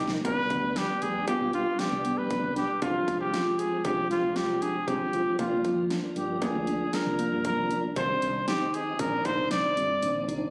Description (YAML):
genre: progressive instrumental, band music in an uneven meter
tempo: 117 BPM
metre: 5/4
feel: straight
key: unclear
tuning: A4 = 440 Hz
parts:
  - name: clear trumpet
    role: melody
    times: 0.0-10.2 s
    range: F4 to D5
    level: -31 LUFS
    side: equal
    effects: delay
  - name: mellow tonewheel organ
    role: accompaniment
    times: 0.0-10.5 s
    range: Eb3 to F4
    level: -36 LUFS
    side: equal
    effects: chorus vibrato, fast rotary speaker
  - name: tine electric piano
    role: arpeggios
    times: 0.0-10.5 s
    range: Bb3 to F4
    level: -35 LUFS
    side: equal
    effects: overdrive, delay
  - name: woody fretless electric bass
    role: bass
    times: 0.0-10.5 s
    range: F1 to C3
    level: -38 LUFS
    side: equal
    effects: none
  - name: dubstep drum kit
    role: drums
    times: 0.1-10.4 s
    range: hi-hat, kick drum, snare drum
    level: -38 LUFS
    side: equal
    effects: distortion
room: light reverb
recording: recorded on a phone in the room, club reverb, faint mains hum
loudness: -28 LUFS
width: mono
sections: 0.2-10.5 A section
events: drum fill 0.0; break 10.3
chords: 0.2 G; 2.8 Dm7b5/C; 5.4 Bb; 8.0 Cmadd9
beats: | 0.25 0.76 1.28 1.79 2.31 | 2.82 3.33 3.85 4.36 4.88 | 5.39 5.91 6.42 6.94 7.45 | 7.97 8.48 9.00 9.51 10.03